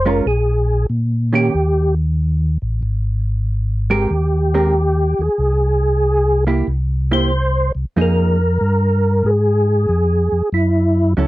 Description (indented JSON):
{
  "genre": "soul jazz organ trio",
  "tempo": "93 BPM",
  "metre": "4/4",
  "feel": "swing 68% on 8ths",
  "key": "Ab major, F minor from 8.0 s",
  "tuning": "A4 = 440 Hz",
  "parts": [
    { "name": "percussive tonewheel organ", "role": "melody", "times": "0.0-11.1 s", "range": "Fb4 to C5", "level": "-18 LUFS", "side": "equal", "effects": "slow rotary speaker, chorus vibrato" },
    { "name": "mellow tonewheel organ", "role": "bass", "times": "0.0-11.3 s", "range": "F1 to Bb2", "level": "-16 LUFS", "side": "equal", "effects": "chorus vibrato, slow rotary speaker" },
    { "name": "vintage hollow-body jazz guitar", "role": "accompaniment", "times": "0.1-11.3 s", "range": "Eb3 to Bb4", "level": "-18 LUFS", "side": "right 3 dB", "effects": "none" }
  ],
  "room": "little or no reverb",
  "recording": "dry, close 1970s-style studio recording",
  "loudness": "-15 LUFS",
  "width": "side -17 dB against mid",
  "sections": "0.0-8.0 A section; 8.0-11.3 B section",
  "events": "none",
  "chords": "0.3 Bbm7; 1.5 Eb; 2.8 Abmaj9; 6.7 C7; 8.0 Fm11; 10.5 Gb7(no3)"
}